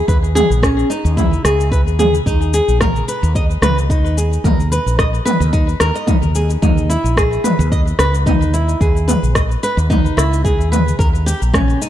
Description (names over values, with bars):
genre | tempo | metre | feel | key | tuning
organic downtempo | 110 BPM | 4/4 | swing 55% on 16ths | unclear | A4 = 440 Hz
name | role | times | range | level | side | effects
flamenco guitar | arpeggios | 0.0-11.9 s | Db4 to Eb5 | -18 LUFS | equal | vintage 12-bit sampler grit, ping-pong delay
mellow fretless electric bass | bass | 0.1-11.7 s | Bb1 to Eb2 | -16 LUFS | equal | sidechain pumping
electronic kick drum | drums | 0.1-11.7 s | none | -17 LUFS | equal | none
organic electronic drum kit | drums | 0.1-11.9 s | cabasa, rim click, toms | -19 LUFS | equal | none
room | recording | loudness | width
light reverb, digital ambience | dark, warm production | -13 LUFS | side -12 dB against mid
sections
0.0-11.9 A section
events
none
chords
0.0 Dbsus2; 2.3 Abmadd9; 6.6 Emaj7; 11.0 Eb7